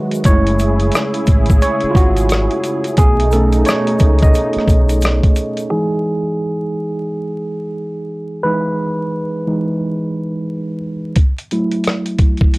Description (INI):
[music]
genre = lo-fi hip hop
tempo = 88 BPM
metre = 4/4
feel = swing 62% on 16ths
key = E major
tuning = A4 = 440 Hz
[part]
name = tine electric piano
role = accompaniment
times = 0.0-12.6 s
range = D#3 to E5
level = -18 LUFS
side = right 1 dB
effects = medium stereo tremolo, cassette tape, low-pass filter
[part]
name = warm analog pad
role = sustained chords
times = 0.0-5.7 s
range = B2 to G#4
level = -22 LUFS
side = equal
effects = chorus
[part]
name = dusty soul sampler-style drum kit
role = drums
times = 0.1-5.7, 11.2-12.6 s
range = hi-hat, kick drum, rim click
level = -13 LUFS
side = equal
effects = none
[part]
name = egg shaker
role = percussion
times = 0.1-5.7 s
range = none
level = -36 LUFS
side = left 3 dB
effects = none
[part]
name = deep dub fingered electric bass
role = bass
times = 0.3-5.2 s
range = F#1 to C#2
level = -16 LUFS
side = equal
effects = transformer saturation
[sound]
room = light reverb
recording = dry, gritty hardware recording, vinyl crackle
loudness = -14 LUFS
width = side -22 dB against mid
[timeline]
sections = 0.0-5.7 A section; 5.7-12.6 B section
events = tine electric piano solo 0.0-5.7, 5.7-12.6; filter sweep on tine electric piano 5.7-12.6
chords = 0.3 F#m9; 3.0 B7; 5.7 Emaj7; 11.2 F#m7